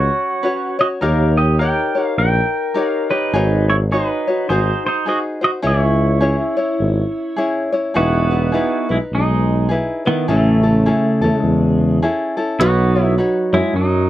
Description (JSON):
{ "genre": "Hawaiian", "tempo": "104 BPM", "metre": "4/4", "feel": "swing 62% on 8ths", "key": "C# minor, E major from 8.0 s", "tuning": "A4 = 440 Hz", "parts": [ { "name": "pedal steel guitar", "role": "melody", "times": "0.0-14.1 s", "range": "C#3 to G5", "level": "-18 LUFS", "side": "right 1 dB", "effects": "none" }, { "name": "tenor ukulele", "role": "accompaniment", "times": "0.0-14.1 s", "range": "C#4 to C#5", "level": "-20 LUFS", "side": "left 2 dB", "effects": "none" }, { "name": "warm tuba", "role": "bass", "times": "0.0-14.1 s", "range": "E1 to F#2", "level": "-17 LUFS", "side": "equal", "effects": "none" }, { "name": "picked steel-string acoustic guitar", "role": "second line", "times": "12.6-14.1 s", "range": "F#3", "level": "-20 LUFS", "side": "right 3 dB", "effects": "none" } ], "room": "little or no reverb", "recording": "dry, close 1970s-style studio recording", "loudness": "-14 LUFS", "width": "side -14 dB against mid", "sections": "0.0-8.0 A section; 8.0-14.1 B section", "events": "none", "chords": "0.0 F#sus4; 1.0 D#7; 3.3 G#7sus4; 4.5 G#7; 5.6 C#m; 8.0 Emaj7; 10.3 Amaj7; 12.6 Badd9" }